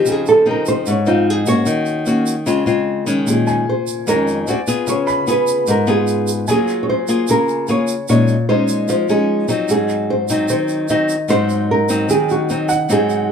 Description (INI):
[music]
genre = bossa nova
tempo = 150 BPM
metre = 4/4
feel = straight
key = Db major, Bb minor from 3.3 s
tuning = A4 = 440 Hz
[part]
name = nylon-string guitar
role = melody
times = 0.0-13.3 s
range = F4 to Eb5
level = -18 LUFS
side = right 2 dB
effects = none
[part]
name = clear baby grand piano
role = accompaniment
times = 0.0-0.1, 3.5-8.1, 12.7-13.3 s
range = Gb5 to Cb6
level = -25 LUFS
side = right 3 dB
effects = none
[part]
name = nylon-string guitar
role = accompaniment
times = 0.0-13.3 s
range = F2 to Ab4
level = -17 LUFS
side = left 2 dB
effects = none
[part]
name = egg shaker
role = percussion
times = 0.1-13.3 s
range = none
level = -29 LUFS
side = right 6 dB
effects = none
[sound]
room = moderate small room ambience, RT60 0.5 s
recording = band playing live in one room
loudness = -14 LUFS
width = side -7 dB against mid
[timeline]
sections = 0.0-3.3 A section; 3.3-13.3 B section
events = nylon-string guitar solo 0.0-3.3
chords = 0.0 Absus4; 1.7 Ebm7; 2.5 Dbmaj7; 3.3 Bbm11; 4.5 D9; 4.9 Db7; 6.5 Gbmaj9; 8.1 Bbm11; 9.7 Ab7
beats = | 0.06 0.46 0.86 1.26 | 1.66 2.06 2.46 2.87 | 3.27 3.67 4.07 4.47 | 4.87 5.27 5.67 6.08 | 6.48 6.88 7.28 7.68 | 8.08 8.48 8.88 9.28 | 9.68 10.08 10.48 10.88 | 11.29 11.69 12.09 12.49 | 12.89 13.29